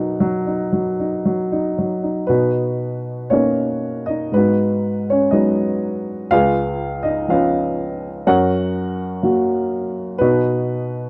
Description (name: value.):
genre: classical, lyrical solo piano.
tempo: 57-62 BPM.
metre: 4/4.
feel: rubato.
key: unclear.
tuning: A4 = 439 Hz.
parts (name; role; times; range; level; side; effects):
dark upright piano; solo; 0.0-11.1 s; C#2 to F#5; -19 LUFS; equal; none.
room: light reverb.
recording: close, detailed microphones.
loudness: -19 LUFS.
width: mono.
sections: 0.0-2.3 A section; 2.3-11.1 B section.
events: none.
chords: 0.0 Bmaj7; 4.3 G#m7; 6.3 C#7; 8.3 F#; 10.2 B.